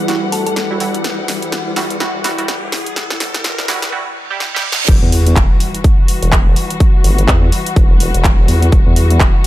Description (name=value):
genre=bass house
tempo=125 BPM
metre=4/4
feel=swing 59% on 16ths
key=E minor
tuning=A4 = 440 Hz
part: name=muted studio string section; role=sustained chords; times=0.0-9.5 s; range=E3 to F#5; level=-23 LUFS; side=left 3 dB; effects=vintage 12-bit sampler grit, sidechain pumping, low-pass filter
part: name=vowel-sweep wobble bass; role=bass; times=0.0-9.3 s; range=E1 to E2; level=-16 LUFS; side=equal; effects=chorus, overdrive, sidechain pumping, high-pass filter
part: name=riser, reverse cymbal and impact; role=sound effects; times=1.2-6.8 s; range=none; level=-25 LUFS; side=right 1 dB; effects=none
part: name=granular cloud pad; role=texture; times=0.0-3.9 s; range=G3 to F#5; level=-25 LUFS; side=left 1 dB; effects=built-in reverb, sidechain pumping
part: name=band-passed chord stab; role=stabs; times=0.1-4.7 s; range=G3 to G4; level=-23 LUFS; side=right 4 dB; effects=chorus, sidechain pumping, digital delay
part: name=big-room dance drum kit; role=drums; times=0.1-9.5 s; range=crash cymbal, handclaps, hi-hat, snare drum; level=-20 LUFS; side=equal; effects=high-pass filter on snare, high-pass filter on hats, high-pass filter on cymbals
part: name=thumb-piano-like synth pluck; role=melody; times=0.3-0.5 s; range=A4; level=-24 LUFS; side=left 2 dB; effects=chorus, digital delay
part: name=electronic kick drum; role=drums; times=4.9-9.3 s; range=none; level=-11 LUFS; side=equal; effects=none
room=little or no reverb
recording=high-pass filter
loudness=-12 LUFS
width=side -15 dB against mid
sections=0.0-4.9 A section; 4.9-9.5 B section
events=build-up 0.0-4.9; drum fill 0.0-3.9, 4.4-4.9; filter sweep on synth stab 0.0-4.9; filter sweep 0.0-4.9; riser 1.2-3.9; reverse cymbal 3.9-4.9; drop 4.9-9.5; impact 4.9-6.8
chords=0.0 Emadd9